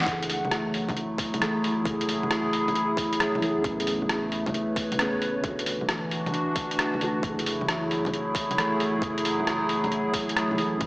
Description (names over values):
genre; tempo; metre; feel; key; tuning
future garage; 134 BPM; 4/4; swing 67% on 16ths; F# minor; A4 = 440 Hz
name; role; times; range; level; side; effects
felt-muted upright piano; accompaniment; 0.0-10.9 s; C#3 to G#4; -33 LUFS; right 1 dB; sidechain pumping, analog delay
warbly tape-like pad; sustained chords; 0.0-10.9 s; E3 to F#5; -26 LUFS; equal; chorus, built-in reverb, sidechain pumping
lo-fi sampler-style drum kit; drums; 0.0-10.9 s; bongos, hi-hat, rim click, snare drum; -29 LUFS; equal; studio reverb
soft 808-style bass; bass; 0.1-10.9 s; E1 to A1; -45 LUFS; equal; sidechain pumping
electronic kick drum; drums; 0.1-10.9 s; none; -34 LUFS; equal; overdrive, studio reverb
room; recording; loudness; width
wet lush hall reverb, RT60 1.9 s; dreamy mix soaked in reverb, small speaker sound; -24 LUFS; side -22 dB against mid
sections
0.1-10.9 A section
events
none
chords
0.1 F#m9; 3.6 Amaj9; 5.4 E9sus4; 7.2 F#m9